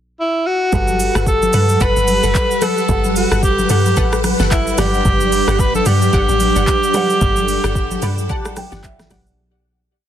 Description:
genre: amapiano.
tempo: 111 BPM.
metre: 4/4.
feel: swing 58% on 16ths.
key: G major.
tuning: A4 = 440 Hz.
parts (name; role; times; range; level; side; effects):
breathy alto saxophone; melody; 0.2-8.8 s; E4 to B4; -18 LUFS; right 1 dB; tape echo.
dark grand piano; accompaniment; 0.7-9.4 s; G3 to B5; -27 LUFS; right 4 dB; none.
string machine, violins; sustained chords; 0.7-9.4 s; G3 to F#5; -22 LUFS; left 1 dB; ensemble chorus, sidechain pumping.
deep log drum bass; bass; 0.7-9.3 s; F#1 to G2; -19 LUFS; equal; none.
smooth R&B drum kit; drums; 0.7-9.4 s; handclaps, hi-hat, kick drum, rim click, shaker, snare drum; -20 LUFS; equal; overdrive.
congas; percussion; 0.7-9.2 s; none; -25 LUFS; left 3 dB; none.
punchy chord stab; stabs; 1.2-9.4 s; G4 to F#5; -25 LUFS; equal; chorus, tape echo.
room: light reverb.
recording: dense, heavily limited modern master, faint mains hum.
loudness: -13 LUFS.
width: side -10 dB against mid.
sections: 0.0-0.7 pickup bar; 0.7-9.4 drop.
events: drop 0.7-9.4; fade-out 7.2-9.4; grand piano fill 7.8-9.4.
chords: 0.0 N.C.; 0.7 Gmaj9; 4.8 Em9/G (rootless).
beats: 0.19 | 0.73 1.27 1.81 2.35 | 2.89 3.43 3.97 4.51 | 5.05 5.59 6.13 6.67 | 7.21 7.75 8.30 8.84.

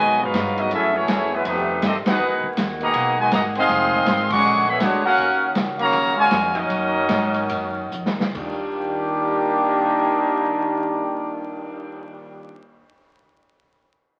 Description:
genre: jazz, big band swing.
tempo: 137-161 BPM.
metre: 4/4.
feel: swing 63% on 8ths.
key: Eb minor.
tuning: A4 = 444 Hz.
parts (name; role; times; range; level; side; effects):
clear trumpet section; melody; 0.0-7.9 s; Ab3 to Db6; -22 LUFS; equal; none.
bright trombone section; second line; 0.0-12.6 s; Bb2 to G4; -26 LUFS; equal; none.
warm saxophone section; sustained chords; 0.0-12.6 s; Cb3 to Ab4; -32 LUFS; equal; none.
upright bass; bass; 0.0-12.8 s; F1 to Ab2; -36 LUFS; equal; none.
swinging big-band drum kit; drums; 0.3-11.7 s; crash cymbal, cymbal swell, hi-hat, kick drum, ride cymbal, snare drum; -28 LUFS; equal; none.
room: wet studio reverb, RT60 0.9 s.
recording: very old 78 rpm record, vinyl crackle.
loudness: -21 LUFS.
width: mono.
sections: 0.0-8.3 A section; 8.3-11.8 B section.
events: band accent 2.0, 4.3; slowing down 5.2-8.3; drum fill 7.9-8.3.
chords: 0.0 Abm9; 0.7 Gbm9; 1.5 F9; 2.2 Emaj9#11; 3.7 Fm7; 4.4 Bb7alt; 5.2 Ebm9; 8.3 Ebmaj9.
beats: 0.34 | 0.71 1.09 1.46 1.83 | 2.20 2.58 2.95 3.32 | 3.69 4.07 4.44 4.81 | 5.18 5.55 5.93 6.31 | 6.70 7.09 7.50 7.92 | 8.35 8.78 9.22 9.66 | 10.09 10.53 10.97 11.40.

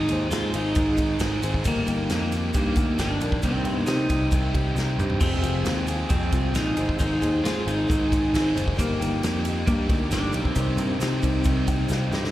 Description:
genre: folk rock and heartland rock.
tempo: 135 BPM.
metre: 4/4.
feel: straight.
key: C minor.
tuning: A4 = 439 Hz.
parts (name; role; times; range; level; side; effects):
pedal steel guitar; melody; 0.0-11.9 s; Bb3 to F4; -27 LUFS; equal; slapback echo.
picked old ladder-braced acoustic guitar; accompaniment; 0.0-12.3 s; F2 to Ab4; -35 LUFS; left 4 dB; slapback echo.
biting overdriven guitar; riff; 0.0-12.3 s; G2 to Ab4; -31 LUFS; right 2 dB; slapback echo.
picked electric bass; bass; 0.0-12.3 s; F1 to C3; -27 LUFS; equal; none.
clear grand piano; accompaniment; 0.1-12.3 s; Bb3 to G5; -37 LUFS; equal; none.
natural country drum kit; drums; 0.1-12.3 s; crash cymbal, kick drum, ride cymbal, snare drum, toms; -27 LUFS; equal; none.
tube shaker; percussion; 0.1-12.2 s; none; -43 LUFS; right 1 dB; none.
tonewheel organ; sustained chords; 5.2-12.3 s; Ab3 to Ab4; -37 LUFS; right 1 dB; none.
room: light reverb.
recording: live gig heard through the venue's PA, recital hall reverb.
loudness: -21 LUFS.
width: side -14 dB against mid.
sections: 0.0-12.3 A section.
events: drum fill 4.8-5.2, 11.9-12.3; grand piano fill 11.4-12.3.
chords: 0.0 Ab; 1.6 Eb/G; 3.4 Cm; 5.2 Fmadd9; 6.8 Ab; 8.8 Eb/G; 10.6 Cm.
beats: 0.32 0.76 1.21 | 1.65 2.09 2.54 2.98 | 3.43 3.87 4.32 4.76 | 5.21 5.65 6.10 6.54 | 6.99 7.43 7.88 8.32 | 8.77 9.22 9.66 10.11 | 10.55 11.00 11.45 11.90.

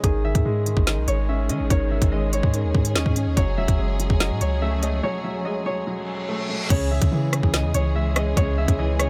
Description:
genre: hip hop, drill.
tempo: 144 BPM.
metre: 4/4.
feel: half-time.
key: C# minor.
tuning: A4 = 440 Hz.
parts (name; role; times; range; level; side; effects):
concert harp; melody; 0.0-9.1 s; G#4 to E5; -31 LUFS; equal; delay.
dark grand piano; accompaniment; 0.0-9.1 s; C#3 to C#4; -31 LUFS; equal; none.
dark studio string section; sustained chords; 0.0-9.1 s; D#3 to G#4; -34 LUFS; equal; none.
long sustained 808-style bass; bass; 0.0-9.1 s; E1 to D#3; -26 LUFS; equal; none.
drill drum kit; drums; 0.0-9.1 s; crash cymbal, hi-hat, kick drum, rim click, snare drum; -23 LUFS; equal; none.
reverse cymbal; sound effects; 6.0-6.7 s; none; -34 LUFS; equal; none.
room: little or no reverb.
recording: none.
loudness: -22 LUFS.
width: mono.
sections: 0.0-6.7 A section; 6.7-9.1 B section.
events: break 5.0-6.7; reverse cymbal 6.0-6.7.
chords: 0.0 G#sus4; 3.4 F#madd9; 6.7 C#m.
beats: | 0.04 0.45 0.87 1.29 | 1.70 2.12 2.54 2.95 | 3.37 3.79 4.20 4.62 | 5.04 5.45 5.87 6.29 | 6.70 7.12 7.54 7.95 | 8.37 8.79.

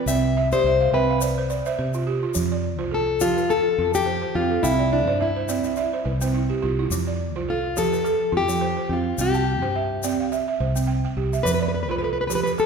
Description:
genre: west african traditional, West African string and xylophone music.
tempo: 106 BPM.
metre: 4/4.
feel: swing 55% on 16ths.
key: F lydian.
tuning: A4 = 439 Hz.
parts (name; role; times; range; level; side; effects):
balafon; arpeggios; 0.0-12.7 s; F3 to A5; -24 LUFS; right 7 dB; none.
fingerpicked plugged-in steel-string acoustic guitar; melody; 0.1-12.7 s; D4 to E5; -23 LUFS; left 4 dB; none.
fingered electric bass; bass; 0.1-12.7 s; C2 to C3; -26 LUFS; equal; none.
egg shaker; percussion; 0.1-12.7 s; none; -34 LUFS; left 6 dB; none.
room: wet concert hall reverb, RT60 1.8 s.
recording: recorded in a church or concert hall.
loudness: -20 LUFS.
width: side -6 dB against mid.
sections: 0.0-2.4 A section; 2.4-12.7 B section.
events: steel-string acoustic guitar solo 0.0-2.4; balafon fill 0.4-2.4, 4.6-6.9.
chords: 0.1 C5; 2.4 F; 4.6 C; 11.5 F.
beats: | 0.09 0.66 1.22 1.79 | 2.36 2.93 3.50 4.07 | 4.64 5.21 5.77 6.34 | 6.91 7.48 8.05 8.62 | 9.18 9.75 10.32 10.88 | 11.45 12.02 12.58.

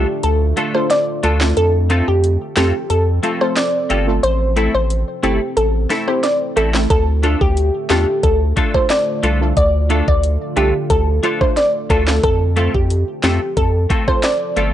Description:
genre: dancehall.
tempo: 90 BPM.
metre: 4/4.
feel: straight.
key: D minor.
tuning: A4 = 440 Hz.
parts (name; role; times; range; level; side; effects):
glassy wavetable pluck; melody; 0.0-14.7 s; G4 to D5; -18 LUFS; equal; chorus, analog delay.
synth brass stab; accompaniment; 0.0-14.6 s; A3 to C5; -23 LUFS; equal; chorus.
deep dark ambient pad; sustained chords; 0.0-14.7 s; D3 to A4; -28 LUFS; right 1 dB; chorus, built-in reverb, sidechain pumping.
clean electric guitar; arpeggios; 0.0-14.7 s; A3 to A4; -22 LUFS; left 2 dB; ensemble chorus.
saturated sub bass; bass; 0.0-14.7 s; G1 to F2; -17 LUFS; equal; none.
afro-pop drum kit; drums; 0.2-14.7 s; handclaps, hi-hat, kick drum, rim click, snare drum; -19 LUFS; equal; overdrive.
room: digital ambience.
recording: dry, gritty hardware recording, cassette tape, nothing above 10.9 kHz.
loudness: -14 LUFS.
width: side -11 dB against mid.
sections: 0.0-14.7 A section.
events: break 0.0-6.9.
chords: 0.0 Dm; 1.6 F; 4.2 Am; 6.9 Dm; 12.2 F.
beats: 0.23 0.90 | 1.57 2.23 2.90 3.57 | 4.23 4.90 5.57 6.23 | 6.90 7.57 8.23 8.90 | 9.57 10.23 10.90 11.57 | 12.23 12.90 13.57 14.23.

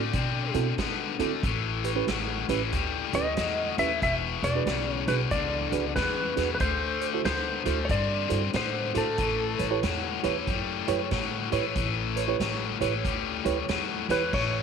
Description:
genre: electric blues shuffle.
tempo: 93 BPM.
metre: 4/4.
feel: swing 63% on 8ths.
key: unclear.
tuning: A4 = 441 Hz.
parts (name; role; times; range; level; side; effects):
clean lap steel guitar; melody; 0.0-9.8, 14.1-14.6 s; A4 to E5; -30 LUFS; left 1 dB; none.
overdriven electric guitar; riff; 0.0-14.6 s; E2 to C4; -29 LUFS; left 12 dB; none.
upright bass; bass; 0.0-14.6 s; E1 to D3; -32 LUFS; equal; none.
vintage drum kit; drums; 0.1-14.5 s; crash cymbal, hi-hat, kick drum, snare drum; -35 LUFS; right 2 dB; none.
reed electric piano; accompaniment; 0.5-14.2 s; C4 to C#5; -32 LUFS; right 11 dB; none.
room: moderate echo chamber reverb, RT60 1.5 s, small room ambience.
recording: 1960s-style stereo with parts hard left and right.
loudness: -25 LUFS.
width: side -6 dB against mid.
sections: 0.0-14.3 A section.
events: none.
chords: 0.0 D7; 1.4 A7; 4.0 E7; 6.6 D7; 9.2 A7.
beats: 0.14 0.78 | 1.43 2.08 2.73 3.37 | 4.02 4.67 5.32 5.96 | 6.61 7.25 7.90 8.54 | 9.19 9.83 10.47 11.12 | 11.76 12.40 13.04 13.69 | 14.33.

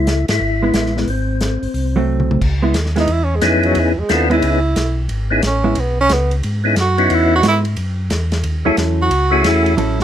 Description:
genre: soul jazz organ trio.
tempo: 179 BPM.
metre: 4/4.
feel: swing 64% on 8ths.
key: C# minor.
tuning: A4 = 440 Hz.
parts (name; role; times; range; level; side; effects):
percussive tonewheel organ; melody; 0.0-9.8 s; A3 to A4; -17 LUFS; left 3 dB; overdrive, chorus vibrato, fast rotary speaker.
vintage hollow-body jazz guitar; accompaniment; 0.0-10.0 s; F#3 to A4; -19 LUFS; right 2 dB; none.
mellow tonewheel organ; bass; 0.0-10.0 s; G#1 to G#2; -18 LUFS; equal; slow rotary speaker.
warm soul drum kit; drums; 0.1-10.0 s; crash cymbal, hi-hat, kick drum, ride cymbal, snare drum, toms; -24 LUFS; equal; none.
breathy tenor saxophone; melody; 3.0-10.0 s; E3 to F#4; -18 LUFS; right 3 dB; none.
room: light reverb.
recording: none.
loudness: -14 LUFS.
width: side -10 dB against mid.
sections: 0.0-2.4 A section; 2.4-10.0 B section.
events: band accent 0.2; drum fill 2.1-2.4; tenor saxophone solo 2.4-10.0.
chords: 0.0 C#m7; 1.1 G#7b9; 2.4 C#m7; 7.8 F#m7.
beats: 0.07 0.41 0.74 | 1.08 1.41 1.75 2.08 | 2.42 2.75 3.09 3.42 | 3.76 4.09 4.43 4.76 | 5.09 5.43 5.76 6.10 | 6.43 6.77 7.10 7.44 | 7.77 8.11 8.44 8.78 | 9.11 9.45 9.78.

